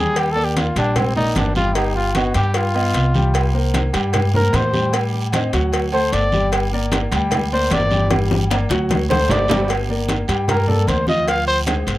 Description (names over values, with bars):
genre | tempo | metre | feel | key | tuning
Afro-Cuban jazz | 151 BPM | 4/4 | straight | G minor | A4 = 441 Hz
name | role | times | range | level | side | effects
breathy trumpet | melody | 0.0-11.6 s | C4 to F5 | -20 LUFS | equal | none
warm concert grand piano | accompaniment | 0.0-12.0 s | F3 to G5 | -24 LUFS | left 1 dB | none
upright bass | bass | 0.0-12.0 s | G1 to A2 | -20 LUFS | equal | none
agogo bells and timbales | percussion | 0.2-11.9 s | none | -26 LUFS | right 6 dB | none
congas | percussion | 0.2-11.9 s | none | -24 LUFS | left 1 dB | none
cowbell and bongos | percussion | 0.2-12.0 s | none | -25 LUFS | left 5 dB | none
guiro | percussion | 0.2-12.0 s | none | -32 LUFS | right 5 dB | none
room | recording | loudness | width
light reverb | none | -16 LUFS | side -16 dB against mid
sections
0.0-9.7 A section; 9.7-12.0 A section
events
trumpet solo 0.0-12.0; drum fill 8.1-9.7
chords
0.2 Ebmaj7; 1.8 Gaug7; 3.3 C7sus4; 4.9 Am7b5; 5.7 D7; 6.5 Gm; 8.9 D7; 9.7 Gm7; 11.3 Dm7b5